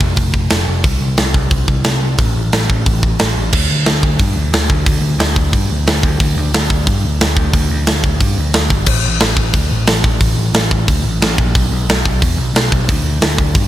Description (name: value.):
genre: punk rock.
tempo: 180 BPM.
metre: 4/4.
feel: straight.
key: unclear.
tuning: A4 = 443 Hz.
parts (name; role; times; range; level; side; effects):
overdriven picked electric bass; bass; 0.0-13.7 s; F1 to G2; -16 LUFS; equal; none.
tight metal drum kit; drums; 0.0-13.6 s; crash cymbal, hi-hat, kick drum, snare drum; -14 LUFS; equal; none.
room: little or no reverb.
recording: none.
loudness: -12 LUFS.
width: side -13 dB against mid.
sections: 0.0-3.5 A section; 3.5-13.7 B section.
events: none.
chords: none.